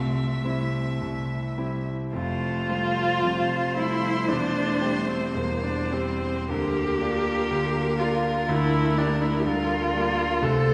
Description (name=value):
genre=classical, slow romantic movement for piano quartet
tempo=50-63 BPM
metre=4/4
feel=rubato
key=unclear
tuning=A4 = 441 Hz
part: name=rich violin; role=melody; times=0.0-10.7 s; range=Bb4 to E5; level=-35 LUFS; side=equal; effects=none
part: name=rich cello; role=second line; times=0.0-10.7 s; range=F3 to Bb3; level=-35 LUFS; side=equal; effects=none
part: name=bright grand piano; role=accompaniment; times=0.0-10.7 s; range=E1 to G4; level=-29 LUFS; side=equal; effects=none
part: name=rich viola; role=accompaniment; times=0.0-10.7 s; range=Bb3 to A4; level=-29 LUFS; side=equal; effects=none
room=wet concert hall reverb, RT60 2.1 s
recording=heard from further back in the room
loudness=-25 LUFS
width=mono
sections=0.0-10.7 A section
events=none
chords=0.0 C; 2.1 F; 4.3 C/E; 6.5 Bb/D; 8.5 Gm7/D